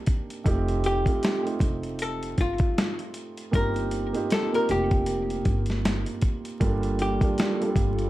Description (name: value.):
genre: lo-fi hip hop.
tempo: 78 BPM.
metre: 4/4.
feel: swing 58% on 16ths.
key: unclear.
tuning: A4 = 440 Hz.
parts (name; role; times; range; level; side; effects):
felt-muted upright piano; accompaniment; 0.0-8.1 s; G3 to A4; -29 LUFS; right 4 dB; cassette tape, plate reverb.
dusty soul sampler-style drum kit; drums; 0.1-8.1 s; hi-hat, kick drum, snare drum; -26 LUFS; equal; none.
upright bass; bass; 0.5-8.1 s; F1 to G1; -30 LUFS; equal; none.
archtop guitar, miked and amplified; melody; 0.9-8.1 s; F4 to Bb4; -29 LUFS; left 2 dB; tape echo, plate reverb.
warbly tape-like pad; sustained chords; 7.4-8.1 s; G3 to A4; -35 LUFS; left 3 dB; chorus, built-in reverb, plate reverb.
room: moderate small room reverb, RT60 0.5 s.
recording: dark, warm production, vinyl crackle.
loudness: -23 LUFS.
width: side -16 dB against mid.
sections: 0.0-8.1 A section.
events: none.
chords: 0.5 F9; 3.5 Eb69; 6.6 Gm9.